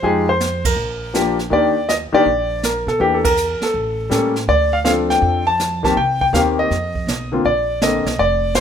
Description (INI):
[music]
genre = jazz piano trio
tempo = 162 BPM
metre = 4/4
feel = swing 66% on 8ths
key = Bb major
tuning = A4 = 441 Hz
[part]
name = warm concert grand piano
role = melody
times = 0.0-8.6 s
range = D3 to A5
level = -16 LUFS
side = left 2 dB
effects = none
[part]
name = upright bass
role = bass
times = 0.0-8.6 s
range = F1 to Cb3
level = -24 LUFS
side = right 2 dB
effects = none
[part]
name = jazz brush drum kit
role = drums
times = 0.0-8.6 s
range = brushed snare drum, hi-hat, kick drum, ride cymbal, snare drum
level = -24 LUFS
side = right 3 dB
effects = none
[sound]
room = light reverb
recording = minimal, uncompressed stereo recording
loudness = -15 LUFS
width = side -8 dB against mid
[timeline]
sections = 0.0-8.6 A section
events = band accent 0.6, 3.2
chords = 0.0 Fm9; 0.8 Bb; 1.5 Ebmaj7; 3.0 Em7b5; 3.7 A7b9; 4.5 Dm7; 6.0 Cm7; 6.7 F5; 7.4 Bbadd9